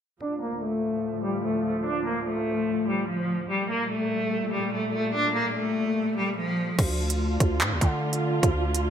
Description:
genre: hip hop, drill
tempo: 146 BPM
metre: 4/4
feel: half-time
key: unclear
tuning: A4 = 440 Hz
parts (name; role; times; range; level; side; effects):
- bright cello; melody; 0.2-6.8 s; F3 to D4; -26 LUFS; left 1 dB; low-pass filter, digital delay
- dark symphonic string section; sustained chords; 0.2-8.9 s; D2 to F4; -31 LUFS; right 1 dB; stereo widening, low-pass filter
- growling 808-style bass; bass; 6.8-8.9 s; D2 to D3; -26 LUFS; equal; none
- drill drum kit; drums; 6.8-8.8 s; crash cymbal, handclaps, hi-hat, kick drum; -25 LUFS; right 1 dB; none
room: moderate plate reverb, RT60 1.9 s, digital ambience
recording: bright 1980s-style digital production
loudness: -24 LUFS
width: side -8 dB against mid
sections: 0.2-6.8 A section; 6.8-8.9 B section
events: filter sweep 0.2-6.8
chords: 0.2 Dm; 3.5 Gmadd9; 6.8 Dm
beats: | 0.21 0.62 1.03 1.44 | 1.85 2.27 2.68 3.09 | 3.50 3.91 4.32 4.73 | 5.14 5.55 5.96 6.38 | 6.79 7.20 7.61 8.02 | 8.43 8.84

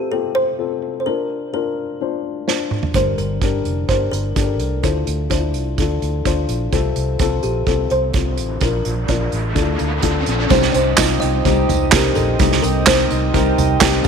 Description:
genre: piano-driven pop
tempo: 127 BPM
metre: 4/4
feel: straight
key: unclear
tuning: A4 = 440 Hz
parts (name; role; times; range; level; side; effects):
- kalimba; melody; 0.0-13.5 s; F4 to Eb5; -23 LUFS; right 1 dB; none
- dark upright piano; accompaniment; 0.0-14.1 s; G2 to C5; -21 LUFS; left 10 dB; none
- unplugged drum kit; drums; 2.5-14.1 s; crash cymbal, handclaps, hi-hat, kick drum, snare drum, toms; -19 LUFS; right 4 dB; none
- vintage muted fingered electric bass; bass; 2.9-14.1 s; F1 to D2; -21 LUFS; right 1 dB; none
- riser; sound effects; 8.3-10.5 s; none; -26 LUFS; equal; none
- sweeping resonant pad; sustained chords; 10.5-14.1 s; Bb3 to Eb6; -29 LUFS; equal; chorus, phaser
- fingerpicked steel-string acoustic guitar; riff; 10.5-14.1 s; C3 to G4; -23 LUFS; right 16 dB; none
- tambourine; percussion; 10.5-14.1 s; none; -33 LUFS; right 14 dB; none
room: light reverb, studio reverb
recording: 1960s-style stereo with parts hard left and right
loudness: -16 LUFS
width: side -6 dB against mid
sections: 0.0-10.5 A section; 10.5-14.1 B section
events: drum fill 2.5-2.9; riser 8.3-10.5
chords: 0.0 F/C; 1.1 Bb; 2.9 Gm; 4.8 Dm7; 6.7 F; 8.6 Bb; 9.6 Dm; 10.5 Cm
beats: 0.11 0.58 | 1.05 1.53 2.00 2.47 | 2.94 3.42 3.89 4.36 | 4.83 5.31 5.78 6.25 | 6.73 7.20 7.67 8.14 | 8.62 9.09 9.56 10.03 | 10.51 10.98 11.45 11.92 | 12.40 12.87 13.34 13.81

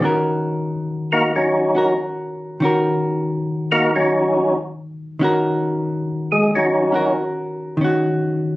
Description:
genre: jazz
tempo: 93 BPM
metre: 4/4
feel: swing 66% on 8ths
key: Eb minor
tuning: A4 = 441 Hz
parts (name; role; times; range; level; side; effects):
- percussive tonewheel organ; melody; 0.0-7.1 s; Gb3 to Bb4; -16 LUFS; equal; slow rotary speaker
- hollow-body jazz guitar; accompaniment; 0.0-8.6 s; Eb3 to Bb4; -20 LUFS; equal; none
room: light reverb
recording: recorded on a phone in the room, studio ambience, compression, lossy compression artefacts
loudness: -17 LUFS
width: side -18 dB against mid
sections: 0.0-8.6 A section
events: tonewheel organ solo 0.0-8.6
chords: 0.0 Ebm7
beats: | 0.02 0.67 1.32 1.97 | 2.61 3.26 3.91 4.55 | 5.20 5.85 6.50 7.14 | 7.79 8.44

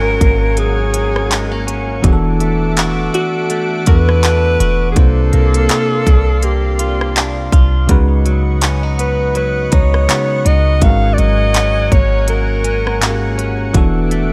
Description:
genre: contemporary R&B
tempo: 82 BPM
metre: 4/4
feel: swing 58% on 16ths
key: unclear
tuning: A4 = 437 Hz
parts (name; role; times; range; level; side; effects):
- mellow alto saxophone; melody; 0.0-13.3 s; F#4 to E#5; -20 LUFS; equal; delay
- bell-like tine electric piano; accompaniment; 0.0-14.3 s; G#2 to C5; -22 LUFS; equal; none
- lush unison pad; sustained chords; 0.0-14.3 s; Bb3 to D6; -28 LUFS; equal; chorus
- direct-recorded clean electric guitar; arpeggios; 0.0-14.3 s; G#2 to F#4; -26 LUFS; equal; subtle chorus, delay
- clean 808-style bass; bass; 0.0-14.3 s; E1 to E2; -18 LUFS; equal; none
- downlifter; sound effects; 0.0-2.0 s; none; barely audible; none; none
- trap drum kit; drums; 0.2-14.3 s; handclaps, hi-hat, kick drum, rim click; -17 LUFS; equal; none
room: digital ambience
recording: none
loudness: -14 LUFS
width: mono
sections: 0.0-14.3 A section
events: none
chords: 0.0 G#9sus4; 2.0 E9sus4; 5.0 C9sus4; 7.9 C#9sus4; 10.8 G#9sus4; 13.7 E9sus4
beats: 0.57 1.31 | 2.04 2.77 3.50 4.23 | 4.96 5.70 6.43 7.16 | 7.89 8.62 9.36 10.09 | 10.82 11.55 12.28 13.01 | 13.74

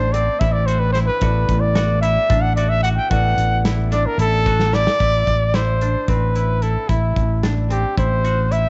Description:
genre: progressive instrumental, band music in an uneven meter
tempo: 222 BPM (eighths)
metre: 7/8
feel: straight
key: A dorian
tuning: A4 = 440 Hz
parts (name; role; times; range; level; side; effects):
- breathy trumpet; melody; 0.0-8.7 s; E4 to G5; -22 LUFS; equal; analog delay
- clear baby grand piano; accompaniment; 0.0-5.0 s; A3 to D5; -34 LUFS; equal; cassette tape
- koto; arpeggios; 0.0-8.7 s; C4 to F#4; -33 LUFS; equal; cassette tape, analog delay
- fingered electric bass; bass; 0.0-8.6 s; A1; -21 LUFS; equal; none
- modern studio drum kit; drums; 0.1-8.6 s; hi-hat, kick drum, snare drum; -26 LUFS; equal; cassette tape
room: studio reverb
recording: home recording on cassette, nothing above 7.9 kHz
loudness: -18 LUFS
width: mono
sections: 0.0-5.0 A section; 5.0-8.7 B section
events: trumpet solo 0.0-5.0; drum fill 4.6-5.0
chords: 0.0 Am; 1.2 Bm7/A; 5.0 Am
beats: 0.14 0.41 0.68 0.95 | 1.22 1.49 1.76 2.03 2.30 2.57 2.84 | 3.11 3.38 3.65 3.92 4.19 4.46 4.73 | 5.00 5.27 5.54 5.81 6.08 6.35 6.62 | 6.89 7.16 7.43 7.70 7.97 8.24 8.51

